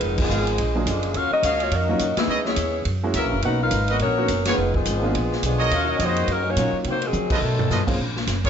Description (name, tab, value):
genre	jazz, big band swing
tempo	210 BPM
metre	4/4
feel	swing 60% on 8ths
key	unclear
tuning	A4 = 440 Hz
part	clear saxophone section	melody	0.0-7.9 s	F3 to F#5	-24 LUFS	left 4 dB	none
part	muted trombone section	second line	0.0-7.9 s	Bb2 to A#4	-30 LUFS	right 5 dB	none
part	upright bass	bass	0.0-8.5 s	F1 to Db3	-25 LUFS	equal	none
part	swinging big-band drum kit	drums	0.0-8.5 s	crash cymbal, hi-hat, kick drum, ride cymbal, snare drum, toms	-27 LUFS	equal	none
part	clear trumpet section	stabs	0.3-8.5 s	Fb4 to F5	-26 LUFS	right 2 dB	none
part	clear grand piano	accompaniment	0.8-8.0 s	Gb3 to Ab4	-27 LUFS	right 2 dB	none
room	moderate large studio reverb, RT60 0.8 s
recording	nothing above 7.9 kHz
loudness	-19 LUFS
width	side -8 dB against mid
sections	0.0-8.0 A section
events	band accent 0.2, 2.2, 4.4, 7.3; drum fill 7.1-7.7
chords	0.0 Fm7b5; 0.6 Bb7b13; 1.2 Ebm9; 2.3 Dbm9; 2.9 Gb7; 3.4 Bmaj7; 4.6 Fm7b5; 5.1 Bb7b9; 5.7 Ebm7; 6.9 Cm7b5; 7.4 B7#11; 8.0 N.C.